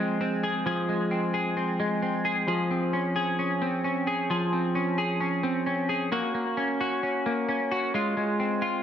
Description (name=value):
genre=dream pop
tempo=66 BPM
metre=4/4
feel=straight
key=Db major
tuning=A4 = 440 Hz
part: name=semi-hollow electric guitar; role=solo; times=0.0-8.8 s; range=F3 to Ab4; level=-25 LUFS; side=equal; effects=analog chorus, analog delay
room=wet spring reverb, RT60 1.5 s, digital ambience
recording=echo-heavy mix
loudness=-25 LUFS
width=side -9 dB against mid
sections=0.0-8.8 A section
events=none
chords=0.0 Fm; 2.5 Dbmaj7/F; 6.1 Gb; 7.9 Ab6